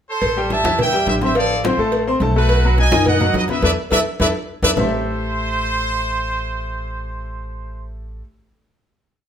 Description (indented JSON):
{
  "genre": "latin, salsa",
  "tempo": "210 BPM",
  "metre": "4/4",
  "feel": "straight",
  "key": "A minor",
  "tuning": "A4 = 440 Hz",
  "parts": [
    { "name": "bright trumpet section", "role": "melody", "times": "0.1-7.8 s", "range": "F#4 to A5", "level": "-21 LUFS", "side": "right 1 dB", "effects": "none" },
    { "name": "upright bass", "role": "bass", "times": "0.2-8.2 s", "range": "A1 to F#2", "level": "-22 LUFS", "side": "equal", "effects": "none" },
    { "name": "congas", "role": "percussion", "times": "0.2-4.8 s", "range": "none", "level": "-24 LUFS", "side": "equal", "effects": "none" },
    { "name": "cowbell and bongos", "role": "percussion", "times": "0.2-4.8 s", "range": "none", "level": "-24 LUFS", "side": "equal", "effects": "none" },
    { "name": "bright grand piano", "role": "accompaniment", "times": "0.4-8.2 s", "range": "D#3 to C6", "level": "-22 LUFS", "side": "left 3 dB", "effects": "none" }
  ],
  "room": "wet stone room reverb, RT60 0.9 s",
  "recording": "band playing live in one room",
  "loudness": "-16 LUFS",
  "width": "side -8 dB against mid",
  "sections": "0.0-0.2 pickup bar; 0.2-4.8 mambo (horn riffs); 4.8-7.1 final chord",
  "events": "band accent 3.6-4.8; drum fill 4.2-4.8",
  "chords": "0.2 Am7; 1.4 Dm7/A; 2.5 B7; 3.6 Esus4; 4.8 Am7",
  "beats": "| 0.21 0.50 0.78 1.07 | 1.35 1.64 1.92 2.21 | 2.49 2.78 3.06 3.35 | 3.63 3.92 4.20 4.49 | 4.77 5.06 5.34 5.63 | 5.92 6.20 6.49 6.78"
}